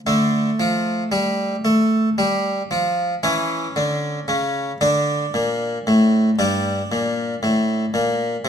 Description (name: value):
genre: classical, baroque-style suite movement for harpsichord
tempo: 76 BPM (dotted quarters)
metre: 12/8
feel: rubato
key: D minor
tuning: A4 = 440 Hz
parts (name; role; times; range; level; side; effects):
- harpsichord; solo; 0.1-8.5 s; G2 to D4; -18 LUFS; equal; none
room: moderate recital hall reverb, RT60 1.5 s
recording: close, detailed microphones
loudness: -18 LUFS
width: side -8 dB against mid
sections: 0.1-8.5 A section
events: none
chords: 0.1 Dm; 3.2 C#m; 4.8 D5; 6.4 Gm